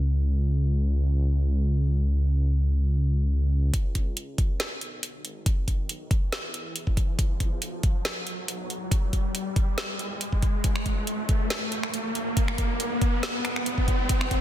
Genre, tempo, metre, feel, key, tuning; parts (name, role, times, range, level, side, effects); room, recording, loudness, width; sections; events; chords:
deep dubstep; 139 BPM; 4/4; swing 53% on 16ths, half-time; C# minor; A4 = 439 Hz
dark detuned saw bass; bass; 0.0-14.4 s; G#1 to E2; -26 LUFS; equal; high-pass filter
electronic kick drum; drums; 3.7-14.4 s; -24 LUFS; equal
garage drum kit; drums; 3.7-14.4 s; finger snaps, hi-hat, snare drum; -31 LUFS; equal
riser; sound effects; 5.2-14.4 s; -31 LUFS; equal
little or no reverb; dense, heavily limited modern master, low-pass filter; -24 LUFS; side -12 dB against mid
0.0-3.7 A section; 3.7-14.4 B section
filter sweep 0.0-3.7; build-up 3.7-14.4; riser 5.2-14.4